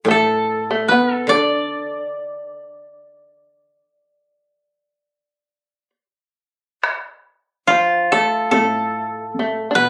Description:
japanese traditional, Japanese chamber music; 64-74 BPM; 4/4; rubato; D kumoi; A4 = 441 Hz
koto; accompaniment; 0.0-9.9 s; A2 to D3; -26 LUFS; equal
koto; melody; 0.1-9.9 s; F4 to D5; -20 LUFS; equal
shamisen; second line; 0.1-9.9 s; F3 to D4; -24 LUFS; equal
taiko ensemble; percussion; 6.8-9.5 s; -25 LUFS; equal
light reverb; recorded on a phone in the room, studio ambience, compression; -19 LUFS; mono
0.0-6.8 A section; 6.8-9.9 B section

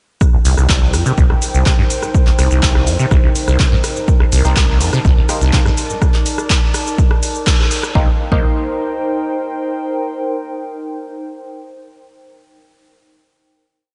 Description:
acid house; 124 BPM; 4/4; straight; C dorian; A4 = 440 Hz
booming analog drum machine; drums; 0.2-7.9 s; cabasa, handclaps, hi-hat, rim click; -23 LUFS; equal
electronic kick drum; drums; 0.2-8.5 s; -16 LUFS; equal
warbly tape-like pad; texture; 0.4-11.6 s; Eb4 to A5; -25 LUFS; equal; chorus, built-in reverb, sidechain pumping
acid bass, saw; riff; 0.3-8.5 s; C2 to C3; -18 LUFS; equal; lush chorus, tape echo
band-passed chord stab; stabs; 4.4-11.7 s; Bb3 to C5; -28 LUFS; equal; phaser, lush chorus, tape echo
moderate lush hall reverb, RT60 2.5 s; dreamy mix soaked in reverb, nothing above 10.5 kHz; -15 LUFS; mono
0.2-8.0 groove; 8.0-11.8 final chord
filter sweep on acid bass 0.2-6.0; band accent 7.5
0.2 Cm7

